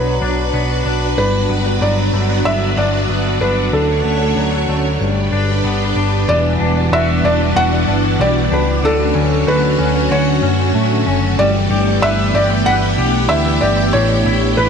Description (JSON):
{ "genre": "dream pop", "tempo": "94 BPM", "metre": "4/4", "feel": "straight", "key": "unclear", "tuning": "A4 = 442 Hz", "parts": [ { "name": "felt-muted upright piano", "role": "melody", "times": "0.0-14.7 s", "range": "A4 to F#5", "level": "-19 LUFS", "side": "right 1 dB", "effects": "tape echo" }, { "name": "string machine, violins", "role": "sustained chords", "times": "0.0-14.7 s", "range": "D3 to C#5", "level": "-18 LUFS", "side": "right 1 dB", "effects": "ensemble chorus" }, { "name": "twangy electric guitar", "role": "arpeggios", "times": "0.0-14.7 s", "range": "G2 to B4", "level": "-20 LUFS", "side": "left 4 dB", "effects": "lush chorus, tape echo" }, { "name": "picked electric bass", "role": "bass", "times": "0.0-14.7 s", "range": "E1 to A2", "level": "-18 LUFS", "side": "equal", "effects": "none" } ], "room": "moderate shimmer reverb, RT60 4.4 s", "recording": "none", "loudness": "-13 LUFS", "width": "side -6 dB against mid", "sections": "0.0-6.3 A section; 6.3-14.7 B section", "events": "none", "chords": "0.0 Bm; 1.2 Gmaj7; 3.7 Dmaj7; 5.0 G; 6.3 Em9; 8.8 Dmaj7; 11.4 G69; 13.9 A9sus4" }